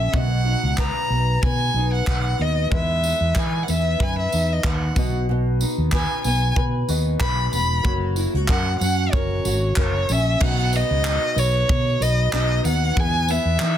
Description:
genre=acoustic pop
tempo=94 BPM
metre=4/4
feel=swing 55% on 16ths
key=B major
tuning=A4 = 439 Hz
part: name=warm violin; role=melody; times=0.0-13.8 s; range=C#5 to B5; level=-24 LUFS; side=equal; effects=plate reverb
part: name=clear baby grand piano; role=accompaniment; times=0.0-13.8 s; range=G#3 to D#5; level=-36 LUFS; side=left 5 dB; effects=plate reverb
part: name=flamenco guitar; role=accompaniment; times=0.0-13.8 s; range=B2 to B4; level=-27 LUFS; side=equal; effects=double-tracked left and right, plate reverb
part: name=mellow fretless electric bass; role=bass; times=0.0-13.8 s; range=E1 to E3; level=-22 LUFS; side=equal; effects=none
part: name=modern studio drum kit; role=drums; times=0.1-13.8 s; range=crash cymbal, handclaps, kick drum, tambourine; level=-24 LUFS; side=equal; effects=none
room=light reverb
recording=dense, heavily limited modern master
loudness=-18 LUFS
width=side -10 dB against mid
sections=0.0-10.4 A section; 10.4-13.8 B section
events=none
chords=0.1 B; 2.7 Emaj7; 5.0 B; 7.8 F#; 10.4 B; 13.0 Emaj7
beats=| 0.14 0.78 1.43 2.07 | 2.71 3.36 4.00 4.64 | 5.28 5.92 6.57 7.21 | 7.85 8.49 9.13 9.77 | 10.41 11.05 11.69 12.33 | 12.97 13.61

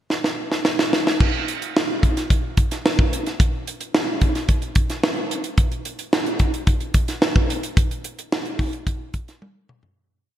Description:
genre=pop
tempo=110 BPM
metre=4/4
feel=straight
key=none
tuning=none
part: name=crisp fusion drum kit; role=drums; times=0.1-10.0 s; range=crash cymbal, hi-hat, kick drum, snare drum, toms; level=-19 LUFS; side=equal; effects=gated reverb
room=moderate lush hall reverb, RT60 2.5 s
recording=bright 1980s-style digital production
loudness=-19 LUFS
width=side -12 dB against mid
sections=0.0-1.2 pickup bar; 1.2-10.0 verse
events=drum fill 0.1-1.2, 9.4-10.0; fade-out 7.8-10.0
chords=none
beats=0.10 0.65 | 1.20 1.75 2.29 2.84 | 3.39 3.94 4.49 5.03 | 5.58 6.13 6.68 7.22 | 7.77 8.32 8.87 9.41

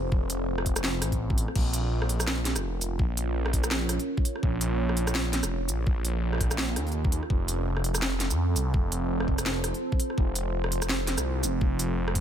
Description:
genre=half-time drum and bass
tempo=167 BPM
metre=4/4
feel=swing 58% on 16ths, half-time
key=Bb harmonic minor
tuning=A4 = 438 Hz
part: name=deep dark ambient pad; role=sustained chords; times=0.0-12.2 s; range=C4 to Db5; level=-33 LUFS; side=right 2 dB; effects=chorus, built-in reverb, vintage 12-bit sampler grit, sidechain pumping
part: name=phased detuned saw bass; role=bass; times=0.0-12.2 s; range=F1 to F2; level=-28 LUFS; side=equal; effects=phaser
part: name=electronic kick drum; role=drums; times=0.1-12.2 s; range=none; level=-26 LUFS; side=equal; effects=none
part: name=drum and bass drum kit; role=drums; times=0.3-12.2 s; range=crash cymbal, hi-hat, rim click, shaker, snare drum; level=-30 LUFS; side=right 1 dB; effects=none
room=digital ambience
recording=none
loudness=-25 LUFS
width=side -9 dB against mid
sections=0.0-12.2 A section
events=none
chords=0.0 F; 1.6 Bbm; 7.3 F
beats=| 0.12 0.48 0.84 1.20 | 1.56 1.92 2.27 2.63 | 2.99 3.35 3.71 4.07 | 4.43 4.79 5.15 5.51 | 5.87 6.23 6.59 6.95 | 7.30 7.66 8.02 8.38 | 8.74 9.10 9.46 9.82 | 10.18 10.54 10.90 11.26 | 11.62 11.97

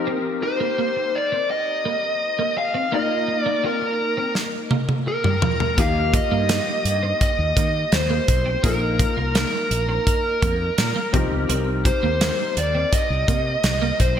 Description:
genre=1980s-style pop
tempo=84 BPM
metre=4/4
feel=straight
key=C minor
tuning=A4 = 437 Hz
part: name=warm grand piano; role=accompaniment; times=0.0-14.2 s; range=Bb3 to Bb4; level=-28 LUFS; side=left 4 dB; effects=ensemble chorus
part: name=twelve-string electric guitar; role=riff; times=0.1-14.2 s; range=F3 to Eb4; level=-30 LUFS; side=right 5 dB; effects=ensemble chorus, digital delay
part: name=bluesy overdriven lead guitar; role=melody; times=0.4-14.2 s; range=Bb4 to F5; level=-23 LUFS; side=equal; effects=distortion
part: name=modern studio drum kit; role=drums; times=4.4-14.2 s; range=hi-hat, kick drum, snare drum, toms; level=-22 LUFS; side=equal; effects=gated reverb
part: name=mellow fretless electric bass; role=bass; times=5.8-14.2 s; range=Bb1 to Eb3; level=-24 LUFS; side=equal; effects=none
room=moderate lush hall reverb, RT60 1.9 s, studio reverb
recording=bright 1980s-style digital production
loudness=-19 LUFS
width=side -9 dB against mid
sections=0.0-14.2 A section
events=drum fill 4.4-5.8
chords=0.0 Cm7; 5.8 Ebadd9; 8.6 Bbsus4; 11.1 Cm7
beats=| 0.07 0.78 1.50 2.21 | 2.92 3.64 4.35 5.07 | 5.78 6.50 7.21 7.92 | 8.64 9.35 10.07 10.78 | 11.49 12.21 12.92 13.64

